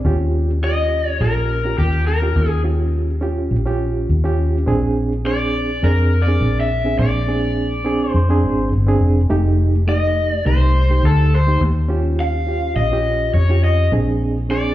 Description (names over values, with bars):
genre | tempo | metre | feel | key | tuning
straight-eighth soul blues | 104 BPM | 4/4 | swing 55% on 16ths | Bb mixolydian | A4 = 439 Hz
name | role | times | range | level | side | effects
reed electric piano | accompaniment | 0.0-14.7 s | A3 to Ab4 | -22 LUFS | right 2 dB | fast tremolo, slapback echo
vintage muted fingered electric bass | bass | 0.0-14.7 s | F1 to F2 | -17 LUFS | equal | none
raw garage guitar | melody | 0.6-14.7 s | G4 to F5 | -22 LUFS | left 2 dB | overdrive, slapback echo
room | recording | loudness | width
light reverb, digital ambience | live gig heard through the venue's PA, club reverb | -15 LUFS | side -14 dB against mid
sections
0.0-14.7 A section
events
none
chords
0.1 Eb9; 4.7 Bb9; 9.3 F9; 11.6 Eb9; 13.9 Bb9